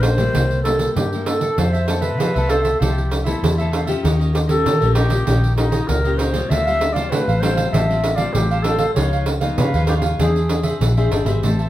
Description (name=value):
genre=samba and choro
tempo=98 BPM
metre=4/4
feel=straight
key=unclear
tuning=A4 = 440 Hz
part: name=bright baroque flute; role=melody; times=0.0-10.8 s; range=Eb4 to E5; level=-22 LUFS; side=equal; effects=none
part: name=nylon-string guitar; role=accompaniment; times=0.0-11.7 s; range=G2 to B4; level=-25 LUFS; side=left 3 dB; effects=none
part: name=vintage muted fingered electric bass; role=bass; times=0.0-11.7 s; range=G1 to F3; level=-19 LUFS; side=equal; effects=none
part: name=pandeiro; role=percussion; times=0.0-11.7 s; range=none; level=-23 LUFS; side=right 3 dB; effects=none
part: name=cavaquinho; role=accompaniment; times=1.6-11.7 s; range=D4 to A5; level=-27 LUFS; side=right 3 dB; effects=none
room=wet studio reverb, RT60 0.5 s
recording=heard from further back in the room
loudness=-16 LUFS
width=side -14 dB against mid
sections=0.0-11.4 A section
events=none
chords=0.3 C7; 1.6 Fmaj7#11; 4.0 Eb9; 6.5 Dm7; 9.0 Db9; 10.2 E7alt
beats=0.35 0.97 | 1.58 2.20 2.82 3.43 | 4.05 4.67 5.28 5.90 | 6.51 7.12 7.74 8.35 | 8.97 9.58 10.20 10.81 | 11.43